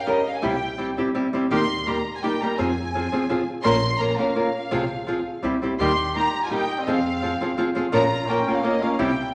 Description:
mexican folk, mariachi; 168 BPM; 3/4; straight; F minor; A4 = 440 Hz
dark studio violin section; melody; 0.0-9.3 s; Eb5 to C6; -30 LUFS; equal
nylon-string guitar; accompaniment; 0.1-9.1 s; Bb2 to Bb4; -25 LUFS; equal
upright bass; bass; 0.4-9.3 s; Bb1 to F2; -36 LUFS; equal
warm trumpet; second line; 5.8-9.3 s; Bb3 to G4; -33 LUFS; equal
wet large studio reverb, RT60 1.3 s; -23 LUFS; mono
0.0-9.3 A section
0.4 C; 1.5 Eb; 2.6 Fm; 3.7 Bbm; 4.7 Fm/C; 5.4 C; 5.8 Eb; 6.9 Fm; 7.9 Bbm

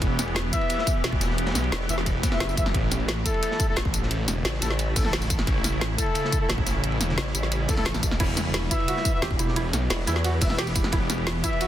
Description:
dark technical drum and bass; 176 BPM; 4/4; straight; E dorian; A4 = 440 Hz
swarming drone; sustained chords; 0.0-11.7 s; C#3 to G4; -32 LUFS; equal; built-in reverb, sidechain pumping
snarling distorted saw bass; bass; 0.0-11.4 s; E1 to C#2; -28 LUFS; equal; distortion, tube saturation
crunchy breakbeat drum kit; drums; 0.0-11.7 s; hi-hat, ride cymbal, snare drum; -36 LUFS; equal
drum and bass drum kit; drums; 0.0-11.7 s; crash cymbal, hi-hat, ride cymbal, snare drum, tambourine; -29 LUFS; equal
electronic kick drum; drums; 0.0-11.5 s; -27 LUFS; equal
mellow brass ensemble; stabs; 0.5-11.7 s; A3 to E5; -31 LUFS; left 2 dB; tape echo
formant-sweep wobble bass; bass; 1.7-1.9, 4.4-4.9, 7.2-10.4 s; E1 to E2; -26 LUFS; equal; chorus
felt-muted upright piano; arpeggios; 8.2-11.7 s; E4 to G4; -32 LUFS; right 4 dB; sidechain pumping, tape echo
light reverb, studio reverb; dense, heavily limited modern master; -22 LUFS; side -12 dB against mid
0.0-11.7 A section
0.0 Em; 2.7 A; 8.2 Em

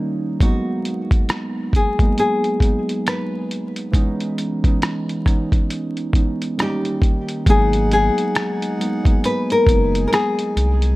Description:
lo-fi hip hop; 68 BPM; 4/4; swing 60% on 16ths; A4 = 440 Hz
muted felt-like synth keys; accompaniment; 0.0-11.0 s; D#3 to D#4; -22 LUFS; right 1 dB; chorus, cassette tape
nylon-string guitar; melody; 0.4-11.0 s; F#4 to B4; -21 LUFS; left 2 dB
lo-fi sampler-style drum kit; drums; 0.4-11.0 s; hi-hat, kick drum, rim click; -18 LUFS; equal
hand-pumped harmonium; sustained chords; 7.5-11.0 s; D#4 to G#5; -32 LUFS; right 1 dB
saturated sub bass; bass; 7.5-11.0 s; F#1 to B#1; -19 LUFS; equal
light reverb; dark, warm production, vinyl crackle; -17 LUFS; side -19 dB against mid
0.0-7.5 A section; 7.5-11.0 B section
0.4 G#m7; 3.9 C#m7; 6.6 D#7; 7.5 G#m7

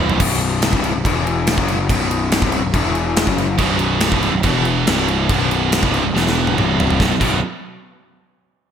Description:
hard rock; 141 BPM; 4/4; straight; A4 = 444 Hz
overdriven semi-hollow guitar; riff; 0.0-7.4 s; B1 to F#3; -21 LUFS; left 8 dB; lush chorus
scooped high-gain guitar; riff; 0.0-0.2, 3.6-7.4 s; B1 to E3; -20 LUFS; right 9 dB; distortion
fuzz picked electric bass; bass; 0.0-7.4 s; B0 to F#1; -21 LUFS; equal; overdrive
gated 80s drum kit; drums; 0.1-7.3 s; crash cymbal, kick drum, snare drum, toms; -19 LUFS; equal; gated reverb
moderate lush hall reverb, RT60 1.6 s, studio reverb; bright 1980s-style digital production; -15 LUFS; side -8 dB against mid
0.2-7.0 A section; 7.0-8.7 B section
drum fill 0.0, 6.1-7.0
0.2 B5; 1.1 E5; 1.6 B5; 2.7 E5; 3.3 B5; 4.4 E5; 4.9 C5; 5.3 B5; 6.1 E5; 6.6 C5; 7.0 B5

